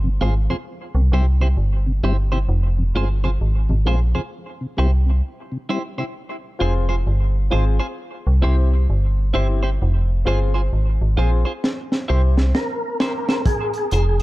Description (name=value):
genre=dub reggae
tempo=66 BPM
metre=4/4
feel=swing 62% on 16ths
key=F harmonic minor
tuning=A4 = 440 Hz
part: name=mellow tonewheel organ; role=accompaniment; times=0.0-6.0, 13.7-14.2 s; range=F2 to F4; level=-29 LUFS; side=left 2 dB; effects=chorus vibrato, slow rotary speaker, high-pass filter
part: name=metallic FM bass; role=bass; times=0.0-14.2 s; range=F1 to C2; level=-17 LUFS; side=equal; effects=none
part: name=clean electric guitar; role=accompaniment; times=0.2-14.2 s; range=E4 to C5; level=-29 LUFS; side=right 2 dB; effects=wide subtle chorus, high-pass filter, dub echo
part: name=warm concert grand piano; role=stabs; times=6.6-14.2 s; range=C4 to C5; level=-29 LUFS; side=left 4 dB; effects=high-pass filter, dub echo
part: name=crunchy breakbeat drum kit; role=drums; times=11.6-14.2 s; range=hi-hat, kick drum, snare drum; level=-22 LUFS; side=equal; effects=none
part: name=percussive tonewheel organ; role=melody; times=12.5-14.2 s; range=Ab4 to Bb4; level=-23 LUFS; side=equal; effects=chorus vibrato, fast rotary speaker, dub echo
room=small room reverb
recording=dark, warm production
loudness=-17 LUFS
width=side -18 dB against mid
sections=0.0-13.5 A section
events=break 0.0-6.1; filter sweep 9.8-14.2; drum fill 11.6-13.5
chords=0.0 Fm; 0.7 C; 2.5 Fm; 4.3 C; 6.1 Fm; 8.0 C; 9.8 Fm; 11.6 C; 13.5 Fm